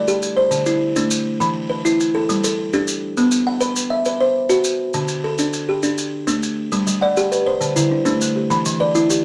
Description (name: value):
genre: southern african traditional, mbira-style interlocking cycle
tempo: 135 BPM (dotted quarters)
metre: 12/8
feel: straight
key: G major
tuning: A4 = 440 Hz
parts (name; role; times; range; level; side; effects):
- buzzing kalimba; arpeggios; 0.0-9.2 s; D3 to F#5; -20 LUFS; equal; none
- maracas; percussion; 0.1-9.2 s; none; -28 LUFS; equal; none
- kalimba; arpeggios; 6.9-9.2 s; D3 to F#5; -25 LUFS; equal; none
room: moderate club reverb, RT60 0.7 s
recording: none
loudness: -19 LUFS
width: mono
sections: 0.0-9.2 A section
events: none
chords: 0.0 G5; 0.5 D5; 1.4 E5; 2.3 G5; 3.2 B5; 4.9 D5; 6.7 G; 7.6 D5; 8.5 Em